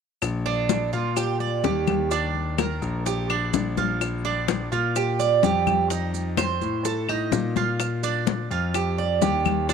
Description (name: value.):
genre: latin, Cuban son and guajira.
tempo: 127 BPM.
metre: 4/4.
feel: straight.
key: Bb major.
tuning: A4 = 444 Hz.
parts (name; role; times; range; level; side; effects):
clear concert grand piano; bass; 0.2-9.7 s; Bb1 to Bb2; -27 LUFS; left 2 dB; none.
bongos; percussion; 0.2-9.7 s; none; -29 LUFS; left 13 dB; none.
claves; percussion; 0.2-9.7 s; none; -32 LUFS; left 13 dB; none.
congas; percussion; 0.2-9.7 s; none; -29 LUFS; left 13 dB; none.
maracas; percussion; 0.2-9.7 s; none; -37 LUFS; right 13 dB; none.
Cuban tres; arpeggios; 0.5-9.7 s; D4 to D5; -25 LUFS; right 9 dB; none.
room: light reverb, small room ambience.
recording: 1960s-style stereo with parts hard left and right.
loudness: -22 LUFS.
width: side -6 dB against mid.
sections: 0.2-9.7 A section.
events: none.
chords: 0.2 Bb6; 5.9 F7; 7.8 Bb6.